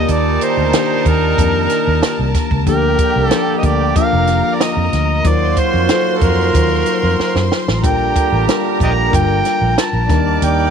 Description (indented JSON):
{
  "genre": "lush 1970s-style soul",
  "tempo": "93 BPM",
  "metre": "4/4",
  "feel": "straight",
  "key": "unclear",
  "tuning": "A4 = 440 Hz",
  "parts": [
    { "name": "overdriven harmonica", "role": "melody", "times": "0.0-10.7 s", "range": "A4 to Bb5", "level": "-18 LUFS", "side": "right 1 dB", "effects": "tape echo" },
    { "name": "warm symphonic violin section", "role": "second line", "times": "0.0-10.7 s", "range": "G4 to D6", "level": "-24 LUFS", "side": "right 1 dB", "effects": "none" },
    { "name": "mellow tine electric piano", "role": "accompaniment", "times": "0.0-10.7 s", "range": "Eb3 to Bb4", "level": "-20 LUFS", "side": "left 13 dB", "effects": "medium stereo tremolo" },
    { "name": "clear horn section", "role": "stabs", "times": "0.0-10.7 s", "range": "Bb2 to Bb4", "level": "-22 LUFS", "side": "right 14 dB", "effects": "none" },
    { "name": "vintage muted fingered electric bass", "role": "bass", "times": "0.0-10.7 s", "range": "F1 to Gb2", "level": "-17 LUFS", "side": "right 1 dB", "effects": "none" },
    { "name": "compact cocktail drum kit", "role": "drums", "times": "0.1-10.6 s", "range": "hi-hat, kick drum, snare drum", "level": "-18 LUFS", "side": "right 2 dB", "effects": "none" }
  ],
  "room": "studio ambience",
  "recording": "1960s-style stereo with parts hard left and right",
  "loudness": "-12 LUFS",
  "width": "side -7 dB against mid",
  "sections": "0.0-10.7 A section",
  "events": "drum fill 7.2-7.8",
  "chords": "0.0 Ebmaj7; 2.7 Bb6; 5.3 Ebmadd9; 7.8 Bb6; 10.1 Ebmaj7",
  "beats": "| 0.09 0.73 1.38 2.02 | 2.67 3.31 3.96 4.61 | 5.25 5.90 6.54 7.19 | 7.83 8.48 9.13 9.77 | 10.42"
}